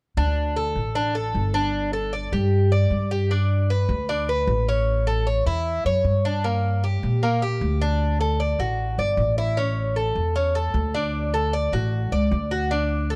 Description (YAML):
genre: latin, Cuban son and guajira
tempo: 153 BPM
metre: 4/4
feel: straight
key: unclear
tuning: A4 = 440 Hz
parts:
  - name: Cuban tres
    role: arpeggios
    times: 0.2-13.2 s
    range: Bb3 to D5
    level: -26 LUFS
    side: equal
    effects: none
  - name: upright bass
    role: bass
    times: 0.2-13.2 s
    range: G1 to Bb2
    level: -25 LUFS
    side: equal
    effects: none
room: light reverb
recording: dark, warm production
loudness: -23 LUFS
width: mono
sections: 0.2-12.7 A section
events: none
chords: 0.2 Gsus2; 3.3 G; 4.9 A; 6.4 Gm; 8.0 D; 9.6 A; 11.1 D